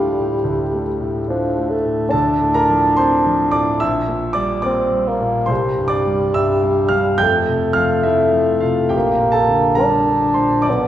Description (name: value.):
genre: classical, romantic duo for bassoon and grand piano.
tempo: 71 BPM.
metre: 4/4.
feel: rubato.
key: unclear.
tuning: A4 = 440 Hz.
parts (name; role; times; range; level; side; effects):
dark bassoon; melody; 0.0-10.9 s; F3 to D4; -17 LUFS; left 1 dB; none.
clear grand piano; accompaniment; 0.0-10.9 s; Bb1 to G6; -18 LUFS; right 1 dB; none.
room: wet recital hall reverb, RT60 1.5 s.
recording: heard from further back in the room.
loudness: -15 LUFS.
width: side -11 dB against mid.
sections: 0.0-10.9 A section.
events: none.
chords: 0.0 Dm; 2.1 Dm7; 3.8 Gm/Bb; 5.5 C; 7.2 F; 8.9 Gm/Bb.